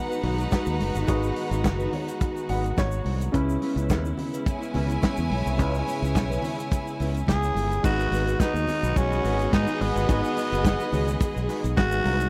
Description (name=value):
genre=disco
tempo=107 BPM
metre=4/4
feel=straight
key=G# minor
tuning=A4 = 439 Hz
part: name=clear studio violin section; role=second line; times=0.0-12.3 s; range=B3 to G#5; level=-35 LUFS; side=equal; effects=none
part: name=warm baby grand piano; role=accompaniment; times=0.0-12.3 s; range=C#3 to F#5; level=-36 LUFS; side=equal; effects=none
part: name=rich symphonic string section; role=sustained chords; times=0.0-12.3 s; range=C#3 to G#4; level=-35 LUFS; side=equal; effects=none
part: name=mellow electric guitar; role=accompaniment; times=0.1-12.2 s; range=C#4 to C#5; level=-36 LUFS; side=equal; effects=phaser
part: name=egg shaker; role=percussion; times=0.1-12.3 s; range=none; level=-51 LUFS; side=equal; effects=none
part: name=fingered electric bass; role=bass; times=0.2-12.3 s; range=F#1 to G#2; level=-29 LUFS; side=equal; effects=none
part: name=warm soul drum kit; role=drums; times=0.2-12.3 s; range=crash cymbal, hi-hat, kick drum, snare drum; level=-29 LUFS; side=equal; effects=none
part: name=congas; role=percussion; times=0.2-12.2 s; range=none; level=-38 LUFS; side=equal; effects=none
part: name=growling tenor saxophone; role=melody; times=7.3-12.3 s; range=B3 to G#4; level=-29 LUFS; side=equal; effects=none
room=little or no reverb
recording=dry, close 1970s-style studio recording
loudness=-25 LUFS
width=mono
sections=0.0-7.8 A section; 7.8-12.3 B section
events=grand piano fill 2.2-3.3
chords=0.0 G#m7; 3.3 C#m7; 7.8 G#m7